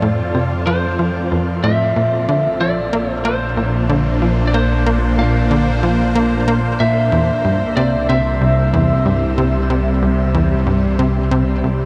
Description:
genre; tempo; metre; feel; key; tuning
ambient, sequencer-driven space music; 93 BPM; 4/4; straight; unclear; A4 = 440 Hz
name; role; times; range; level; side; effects
lightly driven lead guitar; melody; 0.0-11.6 s; C5 to F5; -24 LUFS; equal; tape echo
evolving wavetable pad; sustained chords; 0.0-11.9 s; Bb2 to C5; -23 LUFS; equal; phaser, built-in reverb
tight sequencer bass; riff; 0.0-11.9 s; C2 to Bb3; -20 LUFS; equal; tape echo
analog drone; bass; 0.0-11.9 s; Bb1 to F2; -22 LUFS; equal; chorus, tube saturation
room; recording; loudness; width
wet shimmer reverb, RT60 9.0 s; dark, warm production; -16 LUFS; mono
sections
0.0-11.9 A section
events
none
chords
0.0 F; 2.0 Bbadd9; 7.1 C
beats
0.03 0.67 1.32 | 1.96 2.61 3.25 3.90 | 4.54 5.19 5.83 6.48 | 7.12 7.77 8.41 9.06 | 9.71 10.35 11.00 11.64

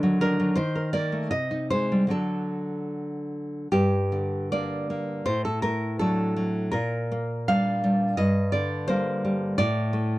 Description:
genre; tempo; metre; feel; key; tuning
romantic piece for solo classical guitar; 72-88 BPM; 2/4; rubato; G minor; A4 = 439 Hz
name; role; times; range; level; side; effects
nylon-string guitar; solo; 0.0-10.2 s; G2 to F5; -23 LUFS; equal; none
room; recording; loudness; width
little or no reverb; dry, close 1970s-style studio recording; -23 LUFS; side -18 dB against mid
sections
0.0-3.7 A section; 3.7-10.2 B section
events
none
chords
0.0 D7; 0.6 Eb5; 1.3 Ab/C; 2.1 D; 3.7 Gm; 5.3 D/A; 6.7 Gm/Bb; 8.2 Gm; 9.6 D5/A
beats
| 0.57 1.32 | 2.12 2.93 | 3.73 4.54 | 5.28 6.00 | 6.74 7.50 | 8.20 8.90 | 9.59

